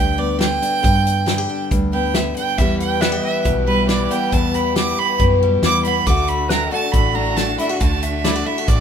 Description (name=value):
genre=honky-tonk and classic country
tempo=138 BPM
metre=4/4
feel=straight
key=E minor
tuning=A4 = 440 Hz
part: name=clear fiddle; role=second line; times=0.0-8.8 s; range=B4 to D6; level=-21 LUFS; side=right 4 dB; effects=none
part: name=picked steel-string acoustic guitar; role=accompaniment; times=0.0-8.8 s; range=E2 to G4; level=-21 LUFS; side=left 3 dB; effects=none
part: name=vintage muted fingered electric bass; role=bass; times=0.0-8.8 s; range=A1 to G2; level=-22 LUFS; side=right 1 dB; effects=none
part: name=natural country drum kit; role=drums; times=0.4-8.8 s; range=hi-hat, kick drum, snare drum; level=-20 LUFS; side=equal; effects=none
part: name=clear studio violin section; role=sustained chords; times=2.6-8.8 s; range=A3 to G4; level=-29 LUFS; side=right 2 dB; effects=none
part: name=pedal steel guitar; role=sustained chords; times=3.0-8.8 s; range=A4 to G5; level=-30 LUFS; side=left 3 dB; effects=none
room=moderate studio reverb, RT60 0.8 s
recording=minimal, uncompressed stereo recording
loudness=-15 LUFS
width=side -8 dB against mid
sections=0.0-8.8 A section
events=fiddle solo 0.0-8.8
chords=0.0 G; 2.6 Em; 6.1 D